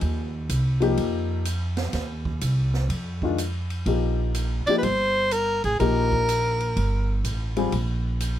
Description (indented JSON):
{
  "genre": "modal jazz",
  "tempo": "124 BPM",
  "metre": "4/4",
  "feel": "swing 67% on 8ths",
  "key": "unclear",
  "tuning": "A4 = 440 Hz",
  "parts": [
    { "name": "warm baby grand piano", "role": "accompaniment", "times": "0.0-7.7 s", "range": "Eb3 to Ab4", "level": "-25 LUFS", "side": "left 5 dB", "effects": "none" },
    { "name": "upright bass", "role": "bass", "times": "0.0-8.4 s", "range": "G1 to F2", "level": "-25 LUFS", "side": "right 1 dB", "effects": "none" },
    { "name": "open jazz drum kit", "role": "drums", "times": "0.0-8.4 s", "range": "hi-hat, kick drum, ride cymbal, snare drum", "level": "-34 LUFS", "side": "right 3 dB", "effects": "none" },
    { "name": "clear soprano saxophone", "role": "melody", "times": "4.7-7.2 s", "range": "Ab4 to D5", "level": "-23 LUFS", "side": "equal", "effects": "none" }
  ],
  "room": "little or no reverb",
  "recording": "close, detailed microphones",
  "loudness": "-22 LUFS",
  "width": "side -11 dB against mid",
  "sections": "0.0-8.4 A section",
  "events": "none",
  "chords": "0.0 Bbsus4; 3.9 Ebadd9",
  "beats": "| 0.01 0.49 0.97 1.46 | 1.94 2.42 2.90 3.39 | 3.87 4.35 4.83 5.32 | 5.80 6.28 6.77 7.25 | 7.73 8.21"
}